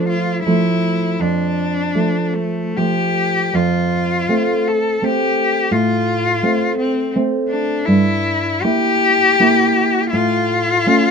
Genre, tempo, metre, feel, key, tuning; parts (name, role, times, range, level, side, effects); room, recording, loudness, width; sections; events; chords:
romantic duo for cello and classical guitar; 68-86 BPM; 3/4; rubato; D minor; A4 = 440 Hz
rich cello; melody; 0.0-11.1 s; A3 to A4; -17 LUFS; left 4 dB
nylon-string guitar; accompaniment; 0.0-11.1 s; F2 to E4; -17 LUFS; right 2 dB
moderate small room reverb, RT60 0.5 s; minimal, uncompressed stereo recording; -14 LUFS; side -6 dB against mid
0.0-11.1 A section
0.0 Dm (rootless); 3.5 F; 5.7 F/A; 7.9 Edim/G; 10.1 A